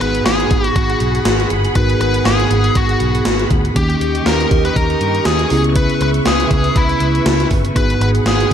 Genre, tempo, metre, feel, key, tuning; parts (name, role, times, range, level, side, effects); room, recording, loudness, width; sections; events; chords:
1980s-style pop; 120 BPM; 4/4; swing 55% on 16ths; G# minor; A4 = 440 Hz
biting lead guitar; melody; 0.0-8.5 s; E4 to B4; -19 LUFS; left 3 dB; overdrive, ping-pong delay
mellow tine electric piano; accompaniment; 0.0-8.5 s; G#2 to B4; -19 LUFS; right 3 dB; phaser
string machine, violas; sustained chords; 0.0-8.5 s; G4 to C#6; -22 LUFS; equal; ensemble chorus
vintage muted fingered electric bass; bass; 0.0-8.5 s; G1 to G2; -19 LUFS; equal
gated 80s digital drum machine; drums; 0.0-8.5 s; hi-hat, kick drum, snare drum; -18 LUFS; equal; gated reverb, gated reverb snare
light reverb; -12 LUFS; side -8 dB against mid
0.0-8.5 A section
0.0 G#m7; 3.8 D#7; 5.5 C#m7; 7.8 G#m7